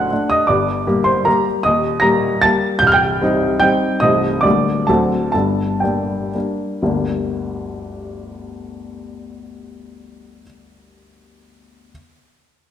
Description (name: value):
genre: classical, romantic triple-time dance for piano with dotted rhythms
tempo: 114-166 BPM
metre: 3/4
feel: rubato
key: G minor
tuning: A4 = 440 Hz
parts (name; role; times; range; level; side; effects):
- warm baby grand piano; solo; 0.0-11.9 s; C1 to Bb6; -15 LUFS; equal; none
room: moderate recital hall reverb, RT60 1.6 s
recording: none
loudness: -14 LUFS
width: side -10 dB against mid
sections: 0.0-6.8 A section; 6.8-9.8 B section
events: slowing down 3.4-6.8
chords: 0.5 Gm; 1.6 Eb; 2.8 Cm; 4.0 Adim/C; 4.4 Gm/D; 4.9 D7; 5.3 Gm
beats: 0.11 | 0.48 0.87 1.27 | 1.65 2.04 2.44 | 2.83 3.23 3.63 | 4.03 4.45 4.89 | 5.35 5.84 6.35 | 6.84 7.33 7.82 | 8.29 8.79 9.29